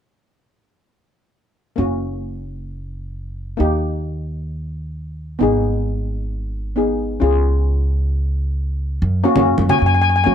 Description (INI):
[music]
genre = calypso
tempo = 133 BPM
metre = 4/4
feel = straight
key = F# major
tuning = A4 = 436 Hz
[part]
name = steel pan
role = accompaniment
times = 1.8-10.3 s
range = A#3 to G#4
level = -19 LUFS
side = left 2 dB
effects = none
[part]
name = upright bass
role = bass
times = 1.8-10.3 s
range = F#1 to F#3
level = -20 LUFS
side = right 1 dB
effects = none
[part]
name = congas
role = percussion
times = 9.4-9.8 s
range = none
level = -22 LUFS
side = right 2 dB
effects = none
[part]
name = steel pan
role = melody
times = 9.7-10.3 s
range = G#5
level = -16 LUFS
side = left 6 dB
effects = none
[sound]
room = light reverb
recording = none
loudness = -17 LUFS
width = side -8 dB against mid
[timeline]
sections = 1.8-9.0 A section; 9.0-10.3 B section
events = none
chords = 1.8 F#; 3.6 D#; 5.4 G#m; 7.2 C#; 9.0 F#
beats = | 1.78 2.23 2.68 3.14 | 3.59 4.04 4.50 4.95 | 5.40 5.86 6.31 6.76 | 7.21 7.66 8.12 8.57 | 9.02 9.47 9.92